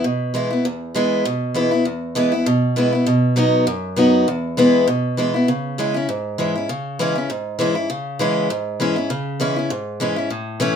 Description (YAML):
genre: bluegrass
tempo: 199 BPM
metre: 4/4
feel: swing 54% on 8ths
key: unclear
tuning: A4 = 441 Hz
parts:
  - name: picked acoustic archtop guitar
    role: solo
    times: 0.0-10.8 s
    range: E2 to F#4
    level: -17 LUFS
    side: equal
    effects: none
room: moderate studio ambience, RT60 0.5 s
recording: minimal, uncompressed stereo recording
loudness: -17 LUFS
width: side -8 dB against mid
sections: 0.0-5.5 A section; 5.5-10.8 B section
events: none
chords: 0.0 E; 3.1 B; 4.3 E; 5.5 C#m